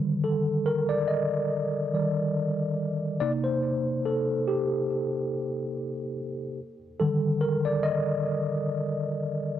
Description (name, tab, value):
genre	hip hop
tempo	71 BPM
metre	4/4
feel	swing 56% on 16ths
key	unclear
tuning	A4 = 440 Hz
part	mellow tine electric piano	solo	0.0-9.6 s	C3 to Eb5	-25 LUFS	equal	medium stereo tremolo
room	moderate spring reverb, RT60 1.4 s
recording	cassette tape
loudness	-25 LUFS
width	side -11 dB against mid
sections	0.0-9.6 A section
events	tine electric piano solo 0.0-9.6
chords	0.0 Ebmaj7; 3.2 Cm7; 6.6 Ebmaj7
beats	0.67 1.51 2.36 | 3.20 4.05 4.89 5.74 | 6.58 7.43 8.27 9.12